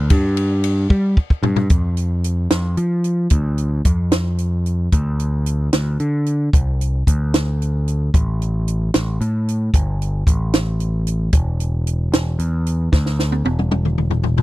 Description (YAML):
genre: math rock and midwest emo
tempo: 75 BPM (dotted quarters)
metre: 6/8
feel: straight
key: unclear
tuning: A4 = 439 Hz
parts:
  - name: growling picked electric bass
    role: bass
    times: 0.0-14.4 s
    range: E1 to G3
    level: -18 LUFS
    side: equal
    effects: overdrive
  - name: compact cocktail drum kit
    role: drums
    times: 0.1-14.4 s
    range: hi-hat, kick drum, ride cymbal, snare drum, toms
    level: -17 LUFS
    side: equal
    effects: none
room: little or no reverb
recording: dry, close 1970s-style studio recording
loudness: -16 LUFS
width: side -18 dB against mid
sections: 0.0-1.7 A section; 1.7-14.4 B section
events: drum fill 0.9-1.7, 12.9-14.4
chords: none